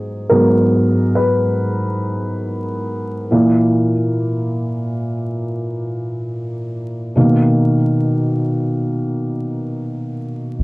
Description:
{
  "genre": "lo-fi hip hop",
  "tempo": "70 BPM",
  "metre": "4/4",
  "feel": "swing 57% on 16ths",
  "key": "unclear",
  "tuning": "A4 = 440 Hz",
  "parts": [
    { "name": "felt-muted upright piano", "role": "accompaniment", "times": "0.0-10.6 s", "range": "G#2 to B4", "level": "-16 LUFS", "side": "equal", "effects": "cassette tape, low-pass filter" },
    { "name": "warm sub bass", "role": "bass", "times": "10.6 s", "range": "G#1", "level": "-16 LUFS", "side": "equal", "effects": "none" }
  ],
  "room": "wet booth ambience, RT60 0.2 s",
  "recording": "home recording on cassette, vinyl crackle",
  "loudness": "-16 LUFS",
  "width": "side -22 dB against mid",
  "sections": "0.0-10.6 A section",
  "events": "felt piano solo 0.0-10.6; filter sweep on felt piano 0.0-10.6",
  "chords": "0.0 G#m7; 3.3 N.C.; 7.2 Bmaj7",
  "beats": "| 0.30 1.16 2.02 2.87 | 3.73 4.59 5.45 6.30 | 7.16 8.02 8.87 9.73 | 10.59"
}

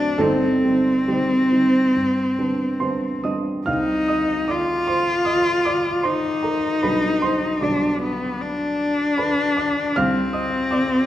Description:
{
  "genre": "classical, romantic duo for cello and grand piano",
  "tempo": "65-80 BPM",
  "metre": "4/4",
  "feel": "rubato",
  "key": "C minor",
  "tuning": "A4 = 439 Hz",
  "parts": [
    { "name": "warm cello", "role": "melody", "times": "0.0-11.1 s", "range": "B3 to F4", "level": "-20 LUFS", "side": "left 1 dB", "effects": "none" },
    { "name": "dark grand piano", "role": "accompaniment", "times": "0.0-11.1 s", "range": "G1 to F6", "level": "-23 LUFS", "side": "right 2 dB", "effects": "none" }
  ],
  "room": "wet recital hall reverb, RT60 1.6 s",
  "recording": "none",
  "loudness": "-18 LUFS",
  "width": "side -13 dB against mid",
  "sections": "0.0-3.7 A section; 3.7-11.1 B section",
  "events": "none",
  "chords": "0.2 Cm/G; 1.9 G; 3.7 Cm; 6.8 G/B; 10.0 Cm",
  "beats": "| 0.19 1.08 1.95 2.81 | 3.67 4.49 5.27 6.05 | 6.84 7.63 8.41 9.19 | 9.96 10.72"
}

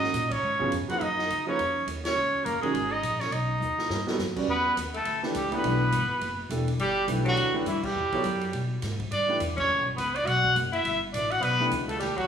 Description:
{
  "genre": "modal jazz",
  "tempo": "207 BPM",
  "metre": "4/4",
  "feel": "swing 60% on 8ths",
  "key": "G# dorian, E dorian from 4.5 s",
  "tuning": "A4 = 440 Hz",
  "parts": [
    { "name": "clear trumpet", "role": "melody", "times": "0.0-12.3 s", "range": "E4 to F#5", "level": "-27 LUFS", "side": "right 1 dB", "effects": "none" },
    { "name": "clear tenor saxophone", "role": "second line", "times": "0.0-12.3 s", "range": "E3 to F#4", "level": "-32 LUFS", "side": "left 1 dB", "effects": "none" },
    { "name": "warm concert grand piano", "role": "accompaniment", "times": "0.0-9.4, 11.6-11.7 s", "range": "C#3 to D5", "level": "-31 LUFS", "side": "right 3 dB", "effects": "none" },
    { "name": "upright bass", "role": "bass", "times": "0.0-12.3 s", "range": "E1 to B2", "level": "-32 LUFS", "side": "left 1 dB", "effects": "none" },
    { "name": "swinging big-band drum kit", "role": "drums", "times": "0.0-12.2 s", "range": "crash cymbal, hi-hat, kick drum, ride cymbal, snare drum", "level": "-37 LUFS", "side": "right 1 dB", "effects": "none" }
  ],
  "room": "wet recital hall reverb, RT60 1.5 s",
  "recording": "recorded in a church or concert hall, studio ambience",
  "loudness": "-24 LUFS",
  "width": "side -8 dB against mid",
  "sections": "0.0-4.5 A section; 4.5-12.3 B section",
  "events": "band accent 0.3, 2.0, 7.8, 9.5; drum fill 3.6-4.2",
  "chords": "0.0 G#9sus4; 3.3 B(b13); 4.5 Em9",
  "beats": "0.13 0.42 0.71 | 1.00 1.29 1.58 1.88 | 2.17 2.45 2.74 3.03 | 3.32 3.61 3.90 4.19 | 4.48 4.77 5.06 5.35 | 5.64 5.93 6.22 6.50 | 6.79 7.08 7.37 7.66 | 7.95 8.24 8.53 8.82 | 9.11 9.40 9.69 9.98 | 10.27 10.56 10.85 11.14 | 11.43 11.71 12.01"
}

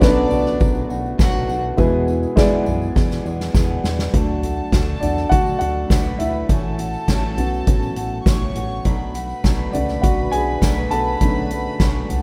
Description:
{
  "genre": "piano-driven pop",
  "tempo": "102 BPM",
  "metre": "4/4",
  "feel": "straight",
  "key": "unclear",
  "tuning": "A4 = 441 Hz",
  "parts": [
    { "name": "warm studio violin section", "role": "second line", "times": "0.0-12.2 s", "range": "D4 to C#6", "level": "-32 LUFS", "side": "equal", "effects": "none" },
    { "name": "dark upright piano", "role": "accompaniment", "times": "0.0-12.2 s", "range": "B2 to A5", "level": "-24 LUFS", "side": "equal", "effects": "none" },
    { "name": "picked steel-string acoustic guitar", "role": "riff", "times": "0.0-12.2 s", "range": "E2 to G#4", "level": "-30 LUFS", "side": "equal", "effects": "none" },
    { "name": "chorused synth bass", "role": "bass", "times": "0.0-12.2 s", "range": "A1 to F#2", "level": "-28 LUFS", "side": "equal", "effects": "none" },
    { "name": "soft-mallet drum kit", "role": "drums", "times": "0.0-12.2 s", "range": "hi-hat, kick drum, ride cymbal, snare drum, toms", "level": "-22 LUFS", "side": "equal", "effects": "none" },
    { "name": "tambourine", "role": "percussion", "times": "0.0-12.2 s", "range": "none", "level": "-49 LUFS", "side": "equal", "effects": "none" }
  ],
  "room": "little or no reverb",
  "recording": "rough home demo mix",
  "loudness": "-19 LUFS",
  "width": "mono",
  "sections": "0.0-4.1 A section; 4.1-12.2 B section",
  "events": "drum fill 3.0-4.1; upright piano solo 4.1-12.2",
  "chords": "0.0 Bm7; 1.8 E; 4.1 D; 6.5 A6; 8.9 Bm7",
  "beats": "0.02 0.61 1.20 | 1.79 2.37 2.96 3.55 | 4.14 4.73 5.32 5.91 | 6.49 7.08 7.67 8.26 | 8.85 9.44 10.03 10.62 | 11.21 11.80"
}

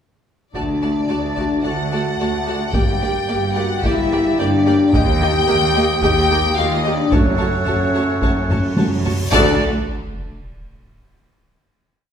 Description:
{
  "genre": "cinematic, epic orchestral film score",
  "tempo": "109 BPM",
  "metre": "4/4",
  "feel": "straight",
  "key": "D major",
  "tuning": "A4 = 440 Hz",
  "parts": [
    { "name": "warm symphonic violin section", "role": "melody", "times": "0.5-9.6 s", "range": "C#5 to G5", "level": "-24 LUFS", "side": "left 5 dB", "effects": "none" },
    { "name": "rich symphonic violin section", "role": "second line", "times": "0.5-9.6 s", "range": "C#5 to A5", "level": "-27 LUFS", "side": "left 2 dB", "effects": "none" },
    { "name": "warm symphonic viola section", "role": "accompaniment", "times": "0.5-9.6 s", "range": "A3 to A4", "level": "-24 LUFS", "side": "right 2 dB", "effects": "none" },
    { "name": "mellow French horn section", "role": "sustained chords", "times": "0.5-9.6 s", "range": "C#4 to G4", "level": "-21 LUFS", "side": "left 2 dB", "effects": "none" },
    { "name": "warm woodwind section", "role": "sustained chords", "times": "0.5-9.5 s", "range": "A3 to A5", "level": "-26 LUFS", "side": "right 1 dB", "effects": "none" },
    { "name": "clear symphonic cello section", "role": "bass", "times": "0.5-9.6 s", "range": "D2 to G2", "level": "-25 LUFS", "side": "right 2 dB", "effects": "none" },
    { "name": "rich symphonic double bass section", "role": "bass", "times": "0.5-9.6 s", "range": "F#1 to Eb2", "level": "-25 LUFS", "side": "right 3 dB", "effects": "none" },
    { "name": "taiko ensemble", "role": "drums", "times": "0.5-10.4 s", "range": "none", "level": "-21 LUFS", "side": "equal", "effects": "none" },
    { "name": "cymbal swell and sub drop", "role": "sound effects", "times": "8.5-11.5 s", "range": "none", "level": "-31 LUFS", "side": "equal", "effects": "none" }
  ],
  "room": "wet recital hall reverb, RT60 1.4 s",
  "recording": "recorded in a church or concert hall",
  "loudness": "-15 LUFS",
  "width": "side -8 dB against mid",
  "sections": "0.5-9.3 theme; 9.3-11.5 final chord",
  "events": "drum fill 8.5-9.3; cymbal swell 8.5-9.3; impact 9.3-11.5",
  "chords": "0.5 D; 2.7 Gm; 4.9 Eb; 7.1 F#m; 9.3 D",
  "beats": "| 0.55 1.10 1.65 2.19 | 2.74 3.29 3.84 4.39 | 4.93 5.48 6.03 6.58 | 7.13 7.68 8.22 8.77 | 9.32 9.87 10.42 10.97"
}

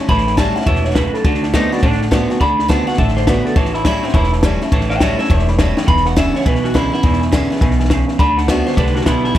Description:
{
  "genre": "rockabilly",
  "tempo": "207 BPM",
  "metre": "4/4",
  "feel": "swing 63% on 8ths",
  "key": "A major",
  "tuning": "A4 = 438 Hz",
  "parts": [
    { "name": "dark upright piano", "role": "accompaniment", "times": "0.0-9.4 s", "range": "B4 to C6", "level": "-29 LUFS", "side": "left 4 dB", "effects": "none" },
    { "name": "picked steel-string acoustic guitar", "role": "accompaniment", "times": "0.0-9.4 s", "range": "E2 to F#4", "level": "-23 LUFS", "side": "left 3 dB", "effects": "none" },
    { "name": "electric guitar through a small old amp", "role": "riff", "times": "0.0-9.4 s", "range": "E2 to B3", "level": "-20 LUFS", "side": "right 4 dB", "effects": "none" },
    { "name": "electric guitar through a small old amp", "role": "melody", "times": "0.1-9.4 s", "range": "C4 to B5", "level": "-20 LUFS", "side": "equal", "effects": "analog delay" },
    { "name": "upright bass", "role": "bass", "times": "0.1-9.4 s", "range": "E1 to D2", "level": "-20 LUFS", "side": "equal", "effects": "none" },
    { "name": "compact cocktail drum kit", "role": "drums", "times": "0.1-9.4 s", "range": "hi-hat, kick drum, snare drum", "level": "-17 LUFS", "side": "equal", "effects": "none" }
  ],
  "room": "light reverb",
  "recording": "none",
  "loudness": "-13 LUFS",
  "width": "side -12 dB against mid",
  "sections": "0.0-9.4 A section",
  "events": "clean electric guitar solo 0.0-9.4; drum fill 5.7",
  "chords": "0.0 A7; 1.2 D7; 3.6 A7; 5.9 E7; 8.2 D7",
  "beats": "| 0.09 0.38 0.67 0.96 | 1.25 1.54 1.83 2.12 | 2.41 2.69 2.98 3.27 | 3.56 3.85 4.14 4.43 | 4.72 5.01 5.30 5.59 | 5.88 6.17 6.46 6.75 | 7.04 7.33 7.62 7.91 | 8.20 8.48 8.77 9.06 | 9.35"
}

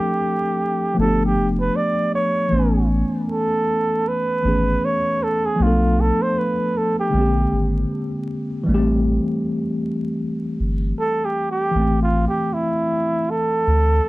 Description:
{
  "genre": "lo-fi hip hop",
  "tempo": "78 BPM",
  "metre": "4/4",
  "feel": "swing 57% on 16ths",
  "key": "A minor",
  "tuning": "A4 = 443 Hz",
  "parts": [
    { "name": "breathy flugelhorn", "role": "melody", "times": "0.0-14.1 s", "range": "E4 to D5", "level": "-21 LUFS", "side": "right 2 dB", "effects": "low-pass filter" },
    { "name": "mellow tine electric piano", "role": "accompaniment", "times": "0.0-14.1 s", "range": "D3 to G#5", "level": "-22 LUFS", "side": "left 1 dB", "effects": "medium stereo tremolo, low-pass filter" },
    { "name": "round analog bass", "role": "bass", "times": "1.0-14.0 s", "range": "F1 to D2", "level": "-20 LUFS", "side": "equal", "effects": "none" }
  ],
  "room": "moderate studio ambience, RT60 0.5 s",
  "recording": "vinyl crackle",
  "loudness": "-18 LUFS",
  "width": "side -19 dB against mid",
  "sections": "0.0-14.1 A section",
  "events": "none",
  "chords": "0.0 Dm7; 1.0 G9; 2.5 Amaj9; 5.6 Bm7b5; 7.1 Bb13; 8.7 Am7",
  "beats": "0.21 0.98 1.75 | 2.52 3.29 4.06 4.83 | 5.60 6.37 7.14 7.91 | 8.67 9.44 10.21 10.98 | 11.75 12.52 13.29 14.06"
}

